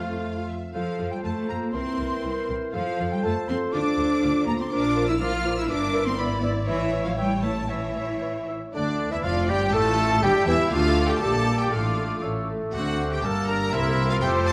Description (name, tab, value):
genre	quick classical-period movement for symphony orchestra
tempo	120 BPM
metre	2/4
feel	rubato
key	F major, D minor from 4.7 s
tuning	A4 = 440 Hz
part	clear studio violin section	melody	0.0-14.5 s	D5 to F6	-36 LUFS	equal	none
part	clear oboe	second line	0.0-14.5 s	D4 to E5	-37 LUFS	equal	none
part	concert flute	second line	0.0-14.5 s	D5 to F6	-35 LUFS	equal	none
part	mellow clarinet	second line	0.0-14.5 s	D4 to E5	-36 LUFS	equal	none
part	rich studio violin section	second line	0.0-14.5 s	D4 to F6	-40 LUFS	equal	none
part	mellow bassoon	accompaniment	0.0-14.5 s	D3 to C4	-36 LUFS	equal	none
part	rich studio viola section	accompaniment	0.0-14.5 s	A3 to D5	-36 LUFS	equal	none
part	warm French horn section	sustained chords	0.0-14.5 s	D3 to D5	-35 LUFS	equal	none
part	dark studio double bass section	bass	0.0-14.5 s	E1 to F2	-33 LUFS	equal	none
part	warm studio cello section	bass	0.0-14.5 s	D2 to F4	-30 LUFS	equal	none
part	clear trumpet section	stabs	8.7-14.5 s	D4 to Bb4	-33 LUFS	equal	none
room	wet concert hall reverb, RT60 2.0 s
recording	none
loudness	-25 LUFS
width	mono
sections	0.7-8.7 A section; 8.7-14.5 B section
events	none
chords	0.0 F; 1.7 C7; 2.7 F; 3.7 Dm; 4.7 Bb; 5.7 Em7b5/G; 6.2 E7/G#; 6.7 A; 8.7 Dsus2; 9.2 G5; 9.7 F/A; 10.2 Em; 10.7 Dm; 11.2 Gm/Bb; 11.7 Dm/A; 12.2 A; 12.7 D7; 13.2 Gm; 13.7 C7